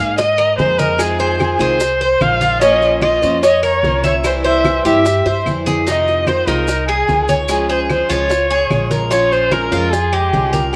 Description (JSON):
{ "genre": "latin, Cuban son and guajira", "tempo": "148 BPM", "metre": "4/4", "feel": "straight", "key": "F minor", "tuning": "A4 = 440 Hz", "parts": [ { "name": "dark erhu", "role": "melody", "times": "0.0-10.8 s", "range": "G4 to F5", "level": "-18 LUFS", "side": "equal", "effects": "cassette tape" }, { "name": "picked steel-string acoustic guitar", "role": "accompaniment", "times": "0.0-10.8 s", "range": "C3 to C5", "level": "-24 LUFS", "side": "equal", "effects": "cassette tape" }, { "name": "Cuban tres", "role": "arpeggios", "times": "0.0-10.8 s", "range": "Ab3 to E5", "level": "-22 LUFS", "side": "equal", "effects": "cassette tape" }, { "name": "upright bass", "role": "bass", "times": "0.0-10.8 s", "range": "Bb1 to Ab2", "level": "-25 LUFS", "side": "equal", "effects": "none" }, { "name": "bongos", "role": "percussion", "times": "0.2-10.7 s", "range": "none", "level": "-28 LUFS", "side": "equal", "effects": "none" }, { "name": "congas", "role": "percussion", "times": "0.2-10.8 s", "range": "none", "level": "-26 LUFS", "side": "equal", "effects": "none" }, { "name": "maracas", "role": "percussion", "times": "0.2-10.7 s", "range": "none", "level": "-35 LUFS", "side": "equal", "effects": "none" }, { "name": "claves", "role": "percussion", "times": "0.4-10.3 s", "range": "none", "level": "-31 LUFS", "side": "equal", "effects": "none" } ], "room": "wet spring reverb, RT60 1.6 s, small room ambience", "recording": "home recording on cassette", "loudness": "-15 LUFS", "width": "mono", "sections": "0.0-5.9 A section; 5.9-10.8 B section", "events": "drum fill 5.3-5.9", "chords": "0.0 Absus2; 1.0 Fm7; 2.6 Bbmadd9; 4.2 C; 5.9 Fm7; 7.5 Db; 9.1 Bbm7" }